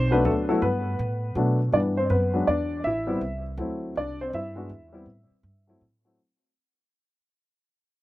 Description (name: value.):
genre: jazz piano trio.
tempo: 162 BPM.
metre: 3/4.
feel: swing 64% on 8ths.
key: G major.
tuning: A4 = 440 Hz.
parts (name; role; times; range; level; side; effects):
warm upright piano; melody; 0.0-6.2 s; E3 to E5; -25 LUFS; left 1 dB; slapback echo.
upright bass; bass; 0.0-6.2 s; A1 to B2; -28 LUFS; right 1 dB; none.
room: little or no reverb.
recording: recorded outdoors, with no room sound.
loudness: -23 LUFS.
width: side -16 dB against mid.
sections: 0.0-1.7 A section; 1.7-6.2 B section.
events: fade-out 1.7-6.2.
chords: 0.0 Gmaj7; 1.7 Cmaj7; 2.5 Dsus2/E; 2.8 Am; 3.6 D7; 4.0 C; 4.7 E5; 5.1 A7(no3); 5.8 Am6.